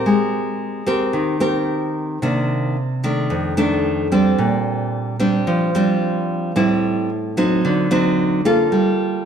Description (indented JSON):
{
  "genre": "bossa nova",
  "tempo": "111 BPM",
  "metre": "4/4",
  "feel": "straight",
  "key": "unclear",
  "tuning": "A4 = 436 Hz",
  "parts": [
    { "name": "nylon-string guitar", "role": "solo", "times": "0.0-9.3 s", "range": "F2 to Bb4", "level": "-16 LUFS", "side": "equal", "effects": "none" }
  ],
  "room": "wet echo chamber reverb, RT60 1.6 s",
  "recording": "heard from further back in the room",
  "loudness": "-17 LUFS",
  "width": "side -8 dB against mid",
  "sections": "0.0-9.3 A section",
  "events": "none",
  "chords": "0.1 Abmaj9; 2.2 Cm9; 3.3 F13; 4.4 Bb69; 6.5 Am7; 7.6 D7b9; 8.7 Gm9"
}